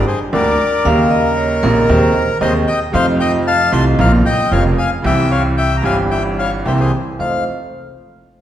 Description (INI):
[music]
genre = tango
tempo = 114 BPM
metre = 4/4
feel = rubato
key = unclear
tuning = A4 = 440 Hz
[part]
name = bandoneon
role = melody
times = 0.0-7.4 s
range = Ab4 to C6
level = -17 LUFS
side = left 2 dB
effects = none
[part]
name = clear baby grand piano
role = accompaniment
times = 0.0-7.4 s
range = F1 to G4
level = -18 LUFS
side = right 1 dB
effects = none
[part]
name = upright bass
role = bass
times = 0.3-7.4 s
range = F1 to F2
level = -18 LUFS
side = right 1 dB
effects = none
[part]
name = vibraphone with medium mallets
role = second line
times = 0.9-2.3, 7.2-7.4 s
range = Bb4 to F5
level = -21 LUFS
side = right 2 dB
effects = none
[sound]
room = wet recital hall reverb, RT60 1.7 s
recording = recorded in a church or concert hall, faint mains hum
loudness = -12 LUFS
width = side -11 dB against mid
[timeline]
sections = 0.0-7.2 A section; 7.2-8.4 B section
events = none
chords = 0.0 Gm; 0.9 Eb7; 1.9 Ab/Eb; 2.9 F7; 4.0 Bbm; 5.0 C; 6.7 C7; 7.2 F7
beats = 0.33 | 0.85 1.37 1.89 2.41 | 2.94 3.46 3.98 4.51 | 5.04 5.57 6.10 6.65 | 7.19